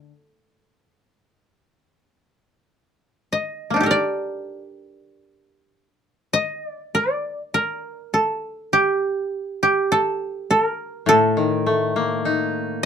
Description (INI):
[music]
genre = japanese traditional, Japanese chamber music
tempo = 49-52 BPM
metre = 4/4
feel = rubato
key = G hirajoshi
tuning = A4 = 440 Hz
[part]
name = koto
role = melody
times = 0.0-12.9 s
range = Bb3 to G5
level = -20 LUFS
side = right 1 dB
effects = none
[part]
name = koto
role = accompaniment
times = 0.0-0.3, 11.1-12.9 s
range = A2 to A4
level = -19 LUFS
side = left 2 dB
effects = none
[sound]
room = light reverb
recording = dark, warm production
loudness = -19 LUFS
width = side -8 dB against mid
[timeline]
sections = 0.0-3.9 A section; 3.9-12.9 B section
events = none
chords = none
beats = 0.26 1.47 2.69 | 3.91 5.12 6.33 7.54 | 8.74 9.92 11.08 12.25